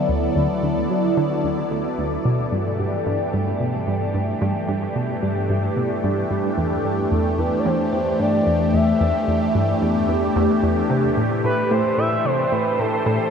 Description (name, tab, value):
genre	ambient, sequencer-driven space music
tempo	111 BPM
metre	4/4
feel	straight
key	unclear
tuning	A4 = 441 Hz
part	phased analog pad	sustained chords	0.0-13.3 s	E3 to D5	-21 LUFS	equal	phaser, chorus, shimmer reverb
part	tight sequenced synth	riff	0.0-13.2 s	D2 to F#3	-23 LUFS	equal	chorus, tape echo
part	expressive portamento lead	melody	7.1-13.3 s	A4 to E5	-23 LUFS	equal	chorus, cassette tape, shimmer reverb, tape echo
room	wet huge ambient reverb, RT60 8.1 s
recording	none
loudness	-18 LUFS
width	side -7 dB against mid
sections	0.0-13.3 A section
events	none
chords	0.0 D; 2.3 G; 6.6 Em; 10.9 Am